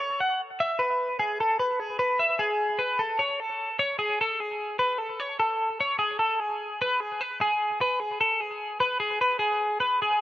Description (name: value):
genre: rock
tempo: 150 BPM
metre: 5/4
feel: straight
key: unclear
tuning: A4 = 444 Hz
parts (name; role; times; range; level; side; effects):
- twelve-string electric guitar; solo; 0.0-10.2 s; G#4 to F#5; -24 LUFS; equal; analog delay
room: moderate studio reverb, RT60 0.6 s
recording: rough home demo mix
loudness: -24 LUFS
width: side -14 dB against mid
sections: 0.0-2.4 A section; 2.4-10.2 B section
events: none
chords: none